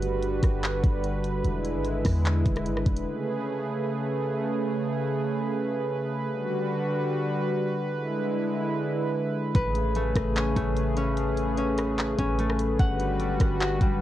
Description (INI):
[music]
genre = hip hop, atmospheric cloud-rap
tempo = 148 BPM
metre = 4/4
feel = half-time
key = A major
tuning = A4 = 440 Hz
[part]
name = warm analog pad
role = sustained chords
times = 0.0-14.0 s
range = C#3 to B4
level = -27 LUFS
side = right 1 dB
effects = chorus, sidechain pumping, cassette tape
[part]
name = clean 808-style bass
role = bass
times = 0.0-3.1, 9.6-14.0 s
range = E1 to E2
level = -28 LUFS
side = equal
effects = none
[part]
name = trap drum kit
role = drums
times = 0.0-3.1, 9.5-13.9 s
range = handclaps, hi-hat, kick drum, rim click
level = -27 LUFS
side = equal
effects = vintage 12-bit sampler grit, cassette tape
[part]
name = concert harp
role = arpeggios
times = 9.6-14.0 s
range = G3 to F#5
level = -29 LUFS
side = left 2 dB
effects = cassette tape, tape echo
[sound]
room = light reverb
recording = home recording on cassette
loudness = -24 LUFS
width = side -13 dB against mid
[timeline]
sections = 0.0-3.1 A section; 3.1-14.0 B section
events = none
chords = 0.0 Gmaj7; 1.4 E7; 3.1 Amaj9; 6.3 Gmaj7; 7.9 E7; 9.6 Amaj9; 12.8 Gmaj7